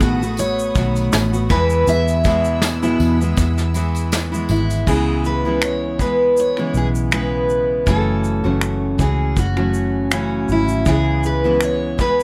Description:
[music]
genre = acoustic pop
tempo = 80 BPM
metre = 4/4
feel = swing 55% on 16ths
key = unclear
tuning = A4 = 438 Hz
[part]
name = picked steel-string acoustic guitar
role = melody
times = 0.0-12.2 s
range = E4 to E5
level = -22 LUFS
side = equal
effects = none
[part]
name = picked steel-string acoustic guitar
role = accompaniment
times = 0.0-12.2 s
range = E2 to F#4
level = -24 LUFS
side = equal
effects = none
[part]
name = clear chamber string section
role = sustained chords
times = 0.0-4.8 s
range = A3 to E6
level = -36 LUFS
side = equal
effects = none
[part]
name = vintage muted fingered electric bass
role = bass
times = 0.0-12.2 s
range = F#1 to E2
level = -23 LUFS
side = equal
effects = none
[part]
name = vintage brush drum kit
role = drums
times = 0.0-12.2 s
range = crash cymbal, finger snaps, kick drum, shaker, snare drum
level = -24 LUFS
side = equal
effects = none
[part]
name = tambourine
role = percussion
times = 0.0-4.9 s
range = none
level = -36 LUFS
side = equal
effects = none
[sound]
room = light reverb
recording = none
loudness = -18 LUFS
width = mono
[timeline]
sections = 0.0-4.9 A section; 4.9-12.2 B section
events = none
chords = 0.0 B7; 1.5 E; 4.9 C#m7; 7.9 F#m7; 10.9 C#m7

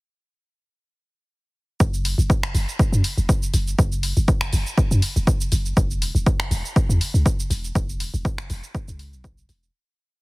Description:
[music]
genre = afro house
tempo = 121 BPM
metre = 4/4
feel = swing 54% on 16ths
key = unclear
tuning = A4 = 440 Hz
[part]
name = warm 808-style bass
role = bass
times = 1.8-9.7 s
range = E1 to F#2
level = -21 LUFS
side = equal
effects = sidechain pumping
[part]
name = electronic kick drum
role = drums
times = 1.8-9.3 s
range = none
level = -20 LUFS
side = equal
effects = none
[part]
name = house drum kit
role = drums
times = 1.8-9.7 s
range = cabasa, finger snaps, hi-hat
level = -28 LUFS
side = right 1 dB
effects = none
[sound]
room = little or no reverb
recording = heavily compressed radio sound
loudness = -19 LUFS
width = side -25 dB against mid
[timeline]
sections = 1.8-9.7 drop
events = drop 1.8-9.7; fade-out 7.1-9.7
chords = none

